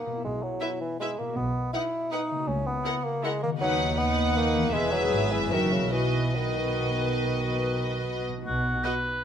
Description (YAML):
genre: classical, orchestral ballroom waltz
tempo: 136-173 BPM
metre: 3/4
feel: rubato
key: B major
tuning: A4 = 441 Hz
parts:
  - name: warm bassoon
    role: accompaniment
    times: 0.0-8.1 s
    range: C#3 to E4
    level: -30 LUFS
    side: right 2 dB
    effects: none
  - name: concert harp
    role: arpeggios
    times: 0.0-9.2 s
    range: F#2 to E5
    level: -36 LUFS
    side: left 8 dB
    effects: none
  - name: warm studio cello section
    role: bass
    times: 0.2-8.8 s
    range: C#2 to B2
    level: -32 LUFS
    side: right 2 dB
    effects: none
  - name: warm studio double bass section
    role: bass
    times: 0.2-8.8 s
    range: E1 to D#2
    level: -32 LUFS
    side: right 2 dB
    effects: none
  - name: clear studio violin section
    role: melody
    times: 0.6-8.9 s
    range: D#5 to F#5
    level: -32 LUFS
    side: left 2 dB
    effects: none
  - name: warm studio violin section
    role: second line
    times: 0.6-8.9 s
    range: F#4 to B4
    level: -34 LUFS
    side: left 2 dB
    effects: none
  - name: warm studio viola section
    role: accompaniment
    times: 0.6-8.9 s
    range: D#4 to G#4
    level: -33 LUFS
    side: left 2 dB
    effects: none
  - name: warm oboe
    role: second line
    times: 8.5-9.2 s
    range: F#4 to B4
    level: -28 LUFS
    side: equal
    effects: none
room: moderate recital hall reverb, RT60 1.4 s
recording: none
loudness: -24 LUFS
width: side -8 dB against mid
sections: 0.0-8.5 A section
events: none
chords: 0.2 E5/B; 1.4 B; 2.5 F#7/C#; 3.6 B/D#; 4.7 E; 5.5 F#7; 5.9 B